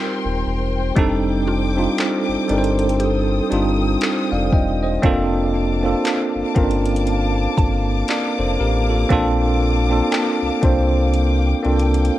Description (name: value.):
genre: contemporary R&B.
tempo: 59 BPM.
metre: 4/4.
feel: swing 58% on 16ths.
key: Bb major.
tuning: A4 = 444 Hz.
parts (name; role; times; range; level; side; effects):
bell-like tine electric piano; accompaniment; 0.0-12.2 s; G3 to G5; -19 LUFS; right 2 dB; medium stereo tremolo.
warm studio string section; sustained chords; 0.0-12.2 s; Bb3 to Eb6; -26 LUFS; left 4 dB; sidechain pumping.
sub bass with octave; bass; 0.2-12.1 s; Eb1 to C2; -20 LUFS; equal; none.
smooth R&B drum kit; drums; 1.0-12.1 s; handclaps, hi-hat, kick drum; -21 LUFS; equal; none.
mallet-like synth pluck; texture; 1.5-11.6 s; F4 to A5; -34 LUFS; equal; none.
room: light reverb.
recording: worn, warbling old tape, cassette tape, warbly pitch drift.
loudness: -16 LUFS.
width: side -14 dB against mid.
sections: 0.0-12.2 A section.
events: none.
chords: 0.0 Eb6; 1.0 F13; 5.0 Bbmaj7/F; 9.1 Bbmaj7.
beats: | 0.97 1.98 3.00 4.02 | 5.04 6.05 7.07 8.09 | 9.10 10.12 11.14 12.15.